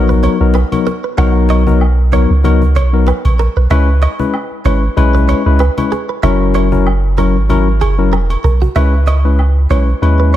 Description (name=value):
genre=afrobeats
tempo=95 BPM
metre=4/4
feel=swing 55% on 16ths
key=B major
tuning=A4 = 440 Hz
part: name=bright tine electric piano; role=accompaniment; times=0.0-10.4 s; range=F#3 to B4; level=-15 LUFS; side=left 6 dB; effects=none
part: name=punchy sub bass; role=bass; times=0.0-10.4 s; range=E1 to D#2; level=-11 LUFS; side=right 1 dB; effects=none
part: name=direct-recorded clean electric guitar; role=riff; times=0.1-10.4 s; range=F#4 to F#5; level=-22 LUFS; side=right 8 dB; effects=wide subtle chorus, diffuse ambient delay
part: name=cajon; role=drums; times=0.1-10.4 s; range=none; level=-24 LUFS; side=equal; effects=none
part: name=agogo bells and woodblock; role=percussion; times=0.2-10.4 s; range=none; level=-25 LUFS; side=right 3 dB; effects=none
room=light reverb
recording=none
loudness=-10 LUFS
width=side -12 dB against mid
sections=0.0-8.8 A section; 8.8-10.4 B section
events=drum fill 8.1-8.8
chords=0.0 Bmaj7; 3.7 C#m7; 6.2 F#7; 8.8 C#m7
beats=0.55 | 1.18 1.81 2.44 3.07 | 3.71 4.34 4.97 5.60 | 6.23 6.86 7.50 8.13 | 8.76 9.39 10.02